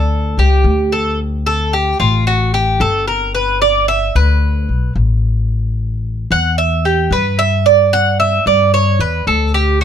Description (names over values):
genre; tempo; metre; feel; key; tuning
latin, Cuban son and guajira; 111 BPM; 4/4; straight; unclear; A4 = 439 Hz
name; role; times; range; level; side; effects
Cuban tres; arpeggios; 0.0-9.8 s; F4 to F#5; -14 LUFS; right 3 dB; none
upright bass; bass; 0.0-9.8 s; G1 to G2; -15 LUFS; left 2 dB; none
room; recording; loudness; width
little or no reverb; close, detailed microphones; -12 LUFS; side -8 dB against mid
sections
0.0-1.2 A section; 1.2-9.8 B section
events
Cuban tres solo 1.2-9.8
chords
0.0 Gsus2; 1.2 D5; 3.3 Gadd9; 5.5 A5; 7.7 G5